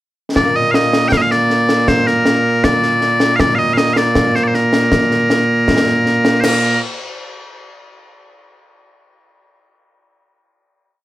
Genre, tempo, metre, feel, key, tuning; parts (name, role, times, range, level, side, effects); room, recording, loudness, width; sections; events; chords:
scottish traditional, Scottish pipe music; 79 BPM; 2/4; straight; Bb major; A4 = 442 Hz
loud bright bagpipes; melody; 0.4-6.8 s; Bb2 to G5; -13 LUFS; equal
concert snare drum, concert bass drum and clash cymbals; drums; 0.4-6.6 s; -17 LUFS; equal
moderate small room reverb, RT60 0.5 s; -12 LUFS; side -15 dB against mid
0.4-6.4 A section; 6.4-8.0 final note